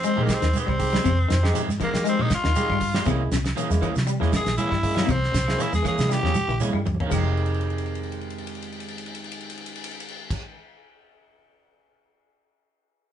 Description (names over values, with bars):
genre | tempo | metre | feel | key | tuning
afrobeat | 119 BPM | 4/4 | swing 54% on 16ths | F minor | A4 = 440 Hz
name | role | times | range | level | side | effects
raspy tenor saxophone | melody | 0.0-6.6 s | Bb3 to Ab4 | -26 LUFS | equal | none
clean electric guitar | arpeggios | 0.0-9.1 s | C3 to Ab3 | -29 LUFS | left 5 dB | none
electric guitar at the edge of break-up | stabs | 0.0-10.7 s | Eb3 to Ab4 | -33 LUFS | right 4 dB | none
vintage muted fingered electric bass | bass | 0.0-10.4 s | F1 to F3 | -25 LUFS | equal | none
damped 70s drum kit | drums | 0.0-10.4 s | crash cymbal, hi-hat, kick drum, ride cymbal, snare drum, toms | -30 LUFS | equal | none
congas | percussion | 0.0-10.4 s | none | -31 LUFS | right 3 dB | none
shekere | percussion | 0.0-10.4 s | none | -35 LUFS | right 4 dB | none
barky tine electric piano | accompaniment | 0.2-10.4 s | Ab3 to G4 | -33 LUFS | right 3 dB | overdrive
claves | percussion | 0.3-10.4 s | none | -42 LUFS | left 10 dB | none
room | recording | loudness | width
wet studio reverb, RT60 0.5 s | band playing live in one room, nothing above 10.4 kHz | -21 LUFS | side -10 dB against mid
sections
0.0-7.1 A section; 7.1-11.1 B section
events
tenor saxophone solo 0.0-7.1; drum fill 6.1-7.1, 7.4-10.3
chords
0.0 Fm9; 3.1 C7b9b13; 7.1 Fm9